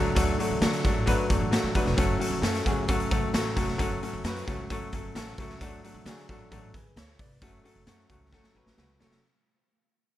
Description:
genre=uptempo 1960s-style soul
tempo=132 BPM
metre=4/4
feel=straight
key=F# minor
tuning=A4 = 438 Hz
part: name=clear baby grand piano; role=accompaniment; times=0.0-9.2 s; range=F#3 to A5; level=-29 LUFS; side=left 1 dB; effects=none
part: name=upright bass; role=bass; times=0.0-9.2 s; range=E1 to D3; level=-33 LUFS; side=equal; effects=none
part: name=raw garage drum kit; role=drums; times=0.2-9.2 s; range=hi-hat, kick drum, snare drum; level=-29 LUFS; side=equal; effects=none
room=little or no reverb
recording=none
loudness=-24 LUFS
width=side -13 dB against mid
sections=0.0-9.2 A section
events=fade-out 0.0-9.2; grand piano fill 4.9-5.6; drum fill 8.3-9.2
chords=0.0 D; 2.0 F#m; 5.6 D; 7.4 F#m

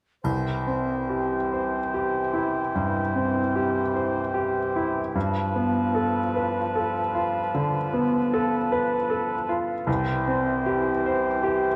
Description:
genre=classical, romantic movement for piano and orchestra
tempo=50 BPM (dotted quarters)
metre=12/8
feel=rubato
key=C major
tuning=A4 = 435 Hz
part: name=clear baby grand piano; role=melody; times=0.2-11.8 s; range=C2 to C5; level=-27 LUFS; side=equal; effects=none
part: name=mellow concert flute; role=second line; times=0.2-11.8 s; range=G5 to A5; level=-34 LUFS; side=equal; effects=none
part: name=mellow cor anglais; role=second line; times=0.2-11.8 s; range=B4 to C5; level=-35 LUFS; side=equal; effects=none
part: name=clear bassoon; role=accompaniment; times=0.2-11.8 s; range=E3 to F3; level=-35 LUFS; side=equal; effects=none
part: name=triangle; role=percussion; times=0.2-1.9 s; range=none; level=-58 LUFS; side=equal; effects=none
room=wet scoring stage reverb, RT60 1.6 s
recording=dark, warm production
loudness=-25 LUFS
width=mono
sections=0.2-11.8 A section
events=none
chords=0.2 C; 5.2 G9; 9.9 C

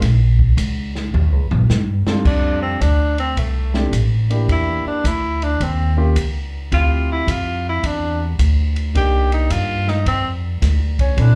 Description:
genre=jazz, small-group swing and bop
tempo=108 BPM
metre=4/4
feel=swing 67% on 8ths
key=F major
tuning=A4 = 441 Hz
part: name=upright bass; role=bass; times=0.0-11.4 s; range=A1 to G2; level=-19 LUFS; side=equal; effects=none
part: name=open jazz drum kit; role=drums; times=0.0-11.4 s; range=crash cymbal, hi-hat, kick drum, ride cymbal, snare drum, toms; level=-26 LUFS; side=equal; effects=none
part: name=warm concert grand piano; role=accompaniment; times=2.1-11.4 s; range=G3 to A4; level=-28 LUFS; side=equal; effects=slapback echo
part: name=warm tenor saxophone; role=melody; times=2.3-11.4 s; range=A3 to G4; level=-24 LUFS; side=equal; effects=slapback echo
room=little or no reverb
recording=live gig heard through the venue's PA, club reverb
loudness=-18 LUFS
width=mono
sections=0.0-2.2 A section; 2.2-11.4 B section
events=drum fill 1.1-2.2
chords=0.0 Bbm; 1.1 Eb9; 2.2 F6; 4.5 Em7b5; 5.6 Eb9; 6.7 Dm11; 8.9 Cm9; 10.1 Dm

